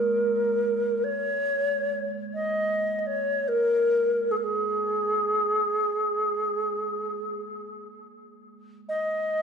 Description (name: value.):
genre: world meditative, free-time meditation music.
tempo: free time.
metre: none.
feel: none.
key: unclear.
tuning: A4 = 443 Hz.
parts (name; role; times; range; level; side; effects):
alto flute; melody; 0.0-9.4 s; Ab4 to Eb5; -24 LUFS; equal; ping-pong delay.
bronze singing bowl; texture; 0.0-5.4 s; Ab3 to Bb3; -38 LUFS; right 6 dB; none.
room: wet recital hall reverb, RT60 1.4 s, studio reverb.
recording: none.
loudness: -24 LUFS.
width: side -6 dB against mid.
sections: 0.0-9.4 A section.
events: none.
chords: none.